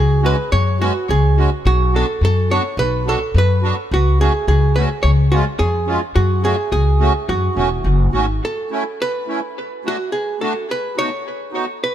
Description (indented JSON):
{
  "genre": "alpine folk, alpine dance band",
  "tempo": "106 BPM",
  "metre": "2/4",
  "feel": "straight",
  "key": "F# minor, A major from 8.4 s",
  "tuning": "A4 = 441 Hz",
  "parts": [
    { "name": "archtop guitar, miked and amplified", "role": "melody", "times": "0.0-11.9 s", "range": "F#4 to C#5", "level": "-20 LUFS", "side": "right 2 dB", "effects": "tape echo" },
    { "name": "upright bass", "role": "bass", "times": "0.0-8.4 s", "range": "E1 to F#2", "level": "-15 LUFS", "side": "left 1 dB", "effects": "none" },
    { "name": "accordion", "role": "accompaniment", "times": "0.2-11.7 s", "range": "G#3 to F#4", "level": "-23 LUFS", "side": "right 2 dB", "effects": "light tremolo tuning, tape echo" }
  ],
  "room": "light reverb",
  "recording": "echo-heavy mix",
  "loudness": "-15 LUFS",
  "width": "side -11 dB against mid",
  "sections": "0.0-8.4 A section; 8.4-11.9 B section",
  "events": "none",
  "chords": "0.0 F#sus2; 1.7 Bm; 3.9 F#m/C#; 5.0 C#; 6.2 F#m; 8.4 A; 9.6 D; 10.7 B",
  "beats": "| 0.53 1.09 | 1.65 2.22 | 2.78 3.35 | 3.91 4.47 | 5.04 5.60 | 6.16 6.72 | 7.29 7.85 | 8.42 8.99 | 9.55 10.12 | 10.68 11.24 | 11.81"
}